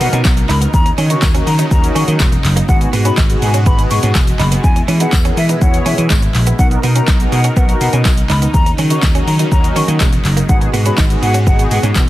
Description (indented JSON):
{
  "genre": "dance-pop",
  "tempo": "123 BPM",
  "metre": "4/4",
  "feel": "straight",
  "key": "G# minor",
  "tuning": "A4 = 441 Hz",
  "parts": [
    { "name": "hollow concert flute", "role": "melody", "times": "0.0-11.8 s", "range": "E5 to C#6", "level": "-22 LUFS", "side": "left 2 dB", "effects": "sidechain pumping" },
    { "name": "mellow synth brass", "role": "accompaniment", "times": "0.0-12.0 s", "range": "B3 to C#5", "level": "-22 LUFS", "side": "left 1 dB", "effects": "chorus" },
    { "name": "filtered supersaw swell", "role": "sustained chords", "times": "0.0-12.1 s", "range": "B2 to A#4", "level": "-23 LUFS", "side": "equal", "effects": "sidechain pumping" },
    { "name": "vintage slap bass", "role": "bass", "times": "0.0-12.1 s", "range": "E1 to E3", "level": "-15 LUFS", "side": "equal", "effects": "sidechain pumping" },
    { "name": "deep house drum kit", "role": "drums", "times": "0.0-12.1 s", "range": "handclaps, hi-hat, kick drum, shaker, snare drum", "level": "-14 LUFS", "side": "equal", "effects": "none" },
    { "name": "downlifter", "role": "sound effects", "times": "0.0-2.7 s", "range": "none", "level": "-33 LUFS", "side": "right 1 dB", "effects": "none" },
    { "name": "direct-recorded clean electric guitar", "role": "riff", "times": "0.1-12.0 s", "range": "G#3 to D#4", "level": "-24 LUFS", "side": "right 7 dB", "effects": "wide subtle chorus" },
    { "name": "tambourine", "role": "percussion", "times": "0.2-12.1 s", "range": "none", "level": "-30 LUFS", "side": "left 6 dB", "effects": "none" }
  ],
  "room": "digital ambience",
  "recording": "dense, heavily limited modern master",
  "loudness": "-10 LUFS",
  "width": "side -15 dB against mid",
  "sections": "0.0-12.1 A section",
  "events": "none",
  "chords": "0.0 Bmaj7; 0.7 D#m7; 2.7 G#m7; 4.6 E; 6.6 Bmaj7; 8.5 D#m7; 10.5 G#m7",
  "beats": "0.25 | 0.74 1.23 1.71 2.20 | 2.69 3.18 3.66 4.15 | 4.64 5.13 5.62 6.10 | 6.59 7.08 7.57 8.05 | 8.54 9.03 9.52 10.01 | 10.49 10.98 11.47 11.96"
}